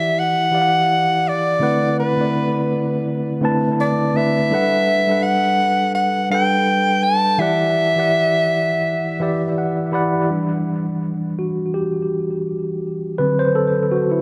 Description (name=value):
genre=R&B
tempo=83 BPM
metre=4/4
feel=swing 57% on 16ths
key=E minor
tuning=A4 = 440 Hz
part: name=warm soprano saxophone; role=melody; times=0.0-9.6 s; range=B4 to A5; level=-20 LUFS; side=equal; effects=tape echo
part: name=mellow tine electric piano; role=accompaniment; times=0.0-14.2 s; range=D3 to B5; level=-21 LUFS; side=equal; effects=tape echo
room=moderate spring reverb, RT60 1.3 s, small room ambience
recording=echo-heavy mix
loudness=-19 LUFS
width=mono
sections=0.0-10.3 A section; 10.3-14.2 B section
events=tine electric piano fill 8.8-10.3; tine electric piano solo 10.3-14.2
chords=0.0 Em9; 1.6 D13; 4.5 Gmaj9; 7.4 Em9; 10.3 Em7; 13.2 D7